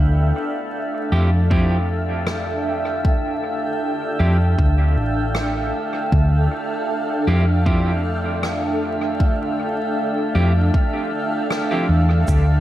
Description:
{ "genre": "ambient dub", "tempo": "78 BPM", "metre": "4/4", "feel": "swing 54% on 16ths", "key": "D minor", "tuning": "A4 = 440 Hz", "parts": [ { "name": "granular cloud pad", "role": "sustained chords", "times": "0.0-12.6 s", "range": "D4 to G5", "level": "-23 LUFS", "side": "right 1 dB", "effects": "built-in reverb" }, { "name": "hollow-body short-scale fingered electric bass", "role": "bass", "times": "0.0-12.6 s", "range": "A1 to F2", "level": "-18 LUFS", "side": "equal", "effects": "none" }, { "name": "drifting glass-harmonics texture", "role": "texture", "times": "0.0-12.6 s", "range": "A3 to A4", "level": "-30 LUFS", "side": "equal", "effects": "chorus, built-in reverb" }, { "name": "clean electric guitar", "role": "stabs", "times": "1.1-11.9 s", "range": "F3 to G4", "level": "-28 LUFS", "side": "right 1 dB", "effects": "wide subtle chorus, dub echo" }, { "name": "electronic kick drum", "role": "drums", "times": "1.5-12.4 s", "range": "none", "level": "-19 LUFS", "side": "equal", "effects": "studio reverb" }, { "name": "rim click and shaker", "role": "drums", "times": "2.3-12.4 s", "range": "none", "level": "-31 LUFS", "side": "equal", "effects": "studio reverb, dub echo" } ], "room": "light reverb, studio reverb", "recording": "vinyl crackle", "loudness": "-17 LUFS", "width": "side -13 dB against mid", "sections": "0.0-12.6 A section", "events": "none", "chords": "0.0 Dmadd9", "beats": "0.74 1.51 2.28 | 3.05 3.82 4.58 5.36 | 6.12 6.89 7.66 8.43 | 9.20 9.97 10.74 11.51 | 12.28" }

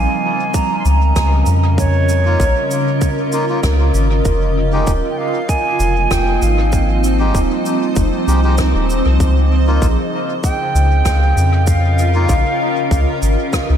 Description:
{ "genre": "ambient dub", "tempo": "97 BPM", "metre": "4/4", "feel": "straight", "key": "unclear", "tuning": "A4 = 440 Hz", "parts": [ { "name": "silver concert flute", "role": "melody", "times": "0.0-13.5 s", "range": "Db5 to C6", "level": "-21 LUFS", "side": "right 2 dB", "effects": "dub echo" }, { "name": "granular cloud pad", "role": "sustained chords", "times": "0.0-13.8 s", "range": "Db3 to Eb5", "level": "-20 LUFS", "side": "equal", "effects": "built-in reverb" }, { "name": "vibraphone with soft mallets", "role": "arpeggios", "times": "0.0-13.8 s", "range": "F3 to F5", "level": "-24 LUFS", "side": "right 2 dB", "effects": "diffuse ambient delay" }, { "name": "soft dub sub bass", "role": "bass", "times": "0.0-13.8 s", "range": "Eb1 to F2", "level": "-14 LUFS", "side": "equal", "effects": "none" }, { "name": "cabasa and rim click", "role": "drums", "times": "0.5-13.7 s", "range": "none", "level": "-29 LUFS", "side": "equal", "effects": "studio reverb, dub echo" }, { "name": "electronic kick drum", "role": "drums", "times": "0.5-13.7 s", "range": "none", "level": "-20 LUFS", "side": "equal", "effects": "overdrive, studio reverb" }, { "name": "melodica", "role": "stabs", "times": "2.3-12.3 s", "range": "Ab3 to G4", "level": "-26 LUFS", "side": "left 1 dB", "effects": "dub echo" } ], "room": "moderate cathedral reverb, RT60 6.0 s", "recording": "dreamy mix soaked in reverb", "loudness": "-13 LUFS", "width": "side -9 dB against mid", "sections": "0.0-13.8 A section", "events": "none", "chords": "0.0 Db6; 4.3 Fm7; 9.2 Db6", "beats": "0.54 1.16 | 1.78 2.40 3.02 3.63 | 4.25 4.87 5.49 6.11 | 6.73 7.34 7.96 8.58 | 9.20 9.82 10.44 11.06 | 11.68 12.29 12.91 13.53" }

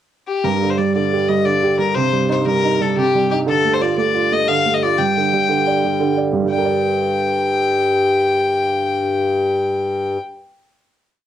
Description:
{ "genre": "celtic folk, Celtic slip jig", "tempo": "119 BPM (dotted quarters)", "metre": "9/8", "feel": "straight", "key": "G minor", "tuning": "A4 = 440 Hz", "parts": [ { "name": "bright fiddle", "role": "melody", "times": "0.3-10.2 s", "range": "G4 to G5", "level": "-19 LUFS", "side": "left 4 dB", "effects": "cassette tape" }, { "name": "warm upright piano", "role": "accompaniment", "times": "0.4-10.3 s", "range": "G2 to D5", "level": "-20 LUFS", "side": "right 6 dB", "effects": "cassette tape" }, { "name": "hand-pumped harmonium", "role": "drone", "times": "0.4-10.2 s", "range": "G2", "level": "-20 LUFS", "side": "left 2 dB", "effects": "cassette tape" } ], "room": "wet studio reverb, RT60 0.5 s", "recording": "home recording on cassette", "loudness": "-15 LUFS", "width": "side -10 dB against mid", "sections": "0.0-0.4 pickup bar; 0.4-6.5 A section; 6.5-9.5 final chord", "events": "none", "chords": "0.4 G5; 1.9 Cm; 3.5 Dm; 5.0 G5; 6.5 Gm", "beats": "| 0.43 0.94 1.44 | 1.95 2.46 2.96 | 3.47 3.97 4.48 | 4.98 5.49 5.99 | 6.49 6.99 7.49 | 7.99 8.49 8.99" }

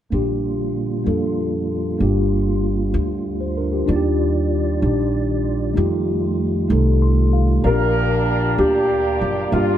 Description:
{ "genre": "slow gospel", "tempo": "64 BPM (dotted quarters)", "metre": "6/8", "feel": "straight", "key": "Bb major", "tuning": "A4 = 440 Hz", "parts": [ { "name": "mellow tine electric piano", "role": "accompaniment", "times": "0.1-9.8 s", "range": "G2 to C6", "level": "-22 LUFS", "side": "left 1 dB", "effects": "medium stereo tremolo" }, { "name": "mellow tonewheel organ", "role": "sustained chords", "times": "0.1-9.8 s", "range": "D3 to Bb5", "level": "-26 LUFS", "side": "right 5 dB", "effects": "fast rotary speaker, chorus vibrato" }, { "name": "upright bass", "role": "bass", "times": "0.1-9.8 s", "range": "Gb1 to F2", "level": "-21 LUFS", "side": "equal", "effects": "none" }, { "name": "muted French horn section", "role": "sustained chords", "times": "7.6-9.8 s", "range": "G3 to F4", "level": "-30 LUFS", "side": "right 1 dB", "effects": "none" }, { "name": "warm baby grand piano", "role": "melody", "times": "7.7-9.8 s", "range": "F4 to Bb4", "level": "-21 LUFS", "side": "equal", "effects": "none" }, { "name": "warm horn section", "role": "melody", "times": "7.7-9.8 s", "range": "Bb3 to Bb4", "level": "-24 LUFS", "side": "right 2 dB", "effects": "none" } ], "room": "moderate stone room reverb, RT60 1.4 s", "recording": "band playing live in one room", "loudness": "-17 LUFS", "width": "side -10 dB against mid", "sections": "0.1-7.6 A section; 7.6-9.8 B section", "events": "tine electric piano fill 6.7-7.6", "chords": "0.1 Bb6; 2.0 Gm7; 3.9 Ebmaj9; 5.8 F9; 7.6 Bb6", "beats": "| 0.12 1.06 | 2.00 2.95 | 3.89 4.83 | 5.77 6.71 | 7.65 8.59 | 9.53" }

